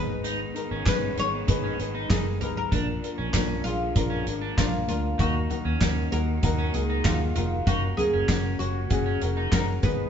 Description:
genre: piano-driven pop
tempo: 97 BPM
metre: 4/4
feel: straight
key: Eb minor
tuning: A4 = 440 Hz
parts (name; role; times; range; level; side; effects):
- oud; melody; 0.0-10.1 s; F4 to Db5; -31 LUFS; equal; none
- warm upright piano; accompaniment; 0.0-10.1 s; Ab2 to Db5; -32 LUFS; left 3 dB; none
- clear studio string section; sustained chords; 0.0-10.1 s; Db3 to Cb4; -36 LUFS; left 2 dB; none
- vintage muted fingered electric bass; bass; 0.0-10.1 s; F1 to Eb2; -29 LUFS; equal; none
- electric guitar at the edge of break-up; riff; 0.2-9.7 s; Db4 to Eb4; -35 LUFS; right 2 dB; spring reverb
- loose indie drum kit; drums; 0.2-10.0 s; handclaps, hi-hat, kick drum, snare drum, toms; -26 LUFS; equal; none
room: light reverb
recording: band playing live in one room, nothing above 7.8 kHz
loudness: -23 LUFS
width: side -8 dB against mid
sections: 0.0-10.1 A section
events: none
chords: 0.0 Abm; 2.7 Bb; 5.2 Ebm

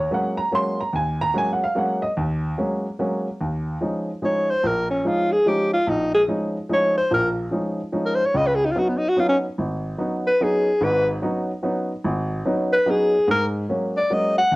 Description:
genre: jazz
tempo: 146 BPM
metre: 3/4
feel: swing 64% on 8ths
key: Ab mixolydian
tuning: A4 = 440 Hz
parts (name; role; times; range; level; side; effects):
- warm baby grand piano; accompaniment; 0.0-14.6 s; Ab1 to C6; -23 LUFS; equal; cassette tape
- breathy alto saxophone; melody; 4.2-14.6 s; Cb4 to Gb5; -19 LUFS; equal; cassette tape
room: moderate studio reverb, RT60 0.6 s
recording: home recording on cassette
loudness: -19 LUFS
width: side -20 dB against mid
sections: 0.0-3.4 A section; 3.4-13.3 A section; 13.3-14.6 A section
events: alto saxophone solo 3.4-14.6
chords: 0.0 Ab9sus4; 3.4 Eb9sus4; 8.3 Db9sus4; 13.3 Ab9sus4

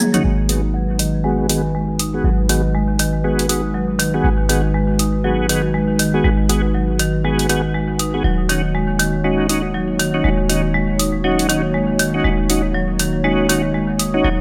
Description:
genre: afro house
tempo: 120 BPM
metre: 4/4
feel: swing 59% on 16ths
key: G# minor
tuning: A4 = 440 Hz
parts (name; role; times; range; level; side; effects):
- dark analog pad; sustained chords; 0.0-14.4 s; G#3 to C#5; -26 LUFS; equal; chorus
- marimba with hard mallets; arpeggios; 0.0-14.3 s; D#3 to G#4; -22 LUFS; equal; low-pass filter, dub echo
- tonewheel organ; stabs; 0.1-14.3 s; B3 to G#4; -25 LUFS; equal; chorus vibrato, slow rotary speaker, low-pass filter, dub echo
- house drum kit; drums; 0.1-14.1 s; hi-hat, shaker, toms; -22 LUFS; equal; overdrive
- warm 808-style bass; bass; 0.2-14.4 s; D#1 to G#1; -24 LUFS; equal; none
room: light reverb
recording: none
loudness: -18 LUFS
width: mono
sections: 0.2-14.4 A section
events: break 0.0; drum fill 0.0; filter sweep on marimba 0.2-14.4; filter sweep on tonewheel organ 0.2-14.4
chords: 0.2 G#m7; 8.2 D#m7

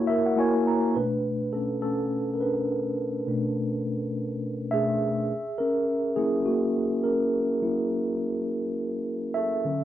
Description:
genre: soul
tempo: 104 BPM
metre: 4/4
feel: swing 58% on 16ths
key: unclear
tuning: A4 = 440 Hz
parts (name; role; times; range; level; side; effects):
- mellow tine electric piano; solo; 0.0-9.8 s; B2 to A#5; -24 LUFS; equal; medium stereo tremolo
room: wet studio reverb, RT60 0.6 s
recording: band playing live in one room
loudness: -24 LUFS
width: side -12 dB against mid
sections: 1.0-9.8 A section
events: tine electric piano fill 0.0-1.0; tine electric piano solo 1.0-9.8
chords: 0.0 F#7; 1.0 Bm11; 5.3 F#7

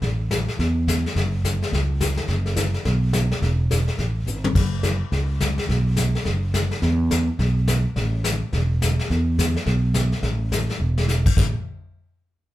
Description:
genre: country, western swing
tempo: 212 BPM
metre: 4/4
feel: swing 62% on 8ths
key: A major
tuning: A4 = 440 Hz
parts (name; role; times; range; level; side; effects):
- fretless electric bass; bass; 0.0-11.5 s; E1 to E2; -21 LUFS; right 1 dB; none
- vintage brush drum kit; drums; 0.0-11.5 s; brushed snare drum, crash cymbal, hi-hat, kick drum, snare drum, toms; -24 LUFS; left 2 dB; none
room: moderate studio reverb, RT60 0.5 s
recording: band playing live in one room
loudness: -19 LUFS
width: side -15 dB against mid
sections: 0.0-9.1 A section; 9.1-11.4 B section; 11.4-12.5 C section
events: drum fill 4.3, 10.8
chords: none

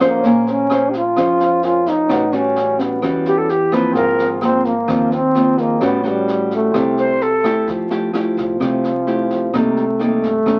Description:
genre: bossa nova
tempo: 129 BPM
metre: 4/4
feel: straight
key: unclear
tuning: A4 = 440 Hz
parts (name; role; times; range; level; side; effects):
- breathy trombone; melody; 0.0-10.6 s; F3 to G4; -20 LUFS; equal; none
- nylon-string guitar; accompaniment; 0.0-10.6 s; Ab2 to C5; -20 LUFS; equal; none
- warm grand piano; accompaniment; 0.0-7.7 s; C4 to Ab5; -29 LUFS; equal; none
- upright bass; bass; 0.0-10.6 s; Ab1 to G2; -38 LUFS; equal; none
- jazz brush drum kit; drums; 0.0-10.6 s; kick drum, rim click, snare drum; -32 LUFS; equal; none
- silver concert flute; second line; 3.3-7.7 s; G4 to C5; -19 LUFS; equal; none
room: light reverb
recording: very old 78 rpm record, vinyl crackle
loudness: -17 LUFS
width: mono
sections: 0.0-7.7 A section; 7.7-10.6 B section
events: none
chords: 0.2 Bbm9; 2.1 A13; 4.0 Ab69; 5.8 A13; 6.7 C; 7.7 Fmaj9; 9.5 Cm7

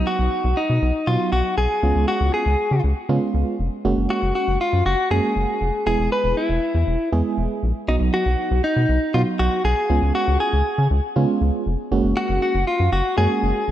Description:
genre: synth-pop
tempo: 119 BPM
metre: 4/4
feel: straight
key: F# major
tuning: A4 = 443 Hz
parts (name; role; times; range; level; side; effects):
- direct-recorded clean electric guitar; melody; 0.0-13.7 s; D#4 to B4; -22 LUFS; left 1 dB; slapback echo
- FM electric piano with tremolo; accompaniment; 0.0-13.6 s; F#3 to G#4; -25 LUFS; right 4 dB; none
- rubbery square bass; bass; 0.0-13.7 s; E1 to C#3; -20 LUFS; left 1 dB; none
room: moderate lush hall reverb, RT60 3.0 s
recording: dark, warm production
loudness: -18 LUFS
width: side -12 dB against mid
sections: 0.0-13.7 A section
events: none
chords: 0.0 B; 1.8 C#7; 3.8 F#add9; 5.9 E; 7.9 B; 9.9 C#7; 11.9 F#add9

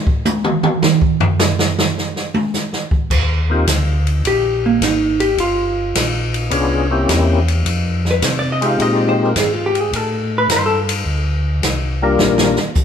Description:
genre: soul jazz organ trio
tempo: 106 BPM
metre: 4/4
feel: swing 69% on 8ths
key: Eb major from 3.1 s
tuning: A4 = 440 Hz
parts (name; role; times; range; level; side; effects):
- open jazz drum kit; drums; 0.1-12.8 s; crash cymbal, hi-hat, kick drum, ride cymbal, snare drum, toms; -18 LUFS; right 1 dB; none
- mellow tonewheel organ; bass; 3.1-12.6 s; G1 to C3; -19 LUFS; equal; chorus vibrato, slow rotary speaker
- percussive tonewheel organ; melody; 3.5-12.6 s; G3 to Bb4; -17 LUFS; left 3 dB; slow rotary speaker, overdrive, chorus vibrato
- vintage hollow-body jazz guitar; accompaniment; 4.3-10.8 s; Bb3 to F5; -18 LUFS; equal; none
room: moderate large studio reverb, RT60 1.4 s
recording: band playing live in one room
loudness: -14 LUFS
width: side -8 dB against mid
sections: 0.0-3.1 A section; 3.1-12.8 A section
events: hollow-body jazz guitar solo 0.0-12.8; drum solo 0.0-3.1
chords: 0.0 N.C.; 3.1 Eb; 5.4 Gm7; 6.5 C7b9; 7.7 Fm7; 9.9 Gsus2; 11.1 C9sus4; 12.2 Gm7

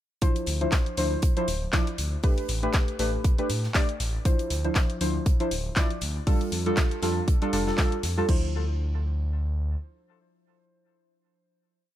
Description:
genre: deep house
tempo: 119 BPM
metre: 4/4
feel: swing 56% on 16ths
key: D dorian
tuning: A4 = 443 Hz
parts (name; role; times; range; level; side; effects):
- deep mellow chord stab; stabs; 0.2-12.0 s; F3 to D5; -29 LUFS; equal; chorus, sidechain pumping, ping-pong delay
- house drum kit; drums; 0.2-8.4 s; crash cymbal, kick drum; -24 LUFS; equal; none
- house drum kit; drums; 0.2-8.1 s; handclaps, hi-hat; -32 LUFS; left 1 dB; none
- modern studio drum kit; drums; 0.2-8.2 s; hi-hat, snare drum; -41 LUFS; right 3 dB; sidechain pumping on hats, high-pass filter on hats, high-pass filter on snare, high-pass filter on room
- smooth gliding synth bass; bass; 0.5-9.8 s; D1 to A2; -28 LUFS; equal; sidechain pumping
room: small room ambience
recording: none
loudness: -23 LUFS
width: side -12 dB against mid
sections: 0.2-8.3 drop; 8.3-12.0 final chord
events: drop 0.2-8.3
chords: 0.2 Dm9; 2.2 A9sus4; 4.3 Dm9; 6.3 F69; 8.3 Dm9

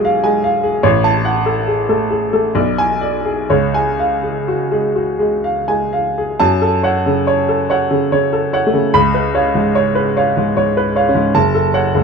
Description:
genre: classical, romantic character piece for solo piano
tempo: 60-77 BPM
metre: 3/4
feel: rubato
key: F# minor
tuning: A4 = 443 Hz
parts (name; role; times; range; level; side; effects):
- clear upright piano; solo; 0.0-12.0 s; F#1 to B5; -13 LUFS; equal; none
room: light reverb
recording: dark, warm production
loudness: -13 LUFS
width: side -5 dB against mid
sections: 0.0-6.4 A section; 6.4-12.0 B section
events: none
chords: 0.0 C#7/B; 0.8 F#m/A; 2.6 G#dim/B; 3.5 C#; 6.4 F#m; 8.9 C#7; 11.3 F#m

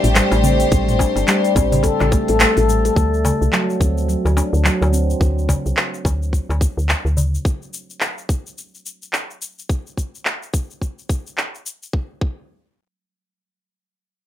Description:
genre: organic downtempo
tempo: 107 BPM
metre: 4/4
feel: swing 59% on 16ths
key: unclear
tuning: A4 = 440 Hz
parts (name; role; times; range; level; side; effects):
- warm studio string section; sustained chords; 0.0-2.9 s; A3 to C5; -23 LUFS; left 1 dB; sidechain pumping, plate reverb
- handpan; arpeggios; 0.0-5.2 s; F#3 to A4; -20 LUFS; left 1 dB; low-pass filter, ping-pong delay
- woody FM bass; bass; 0.0-7.4 s; G1 to D2; -19 LUFS; equal; sidechain pumping
- afro-pop drum kit; drums; 0.0-11.9 s; handclaps, hi-hat, shaker, toms; -21 LUFS; equal; none
- darbuka; percussion; 0.3-7.3 s; none; -25 LUFS; left 1 dB; none
- electronic kick drum; drums; 0.7-12.4 s; none; -19 LUFS; equal; none
room: light reverb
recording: rough home demo mix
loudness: -16 LUFS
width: side -11 dB against mid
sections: 0.0-3.0 A section; 3.0-11.9 B section; 11.9-14.2 C section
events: band accent 2.4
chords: 0.0 Am7; 3.0 D; 7.4 N.C.

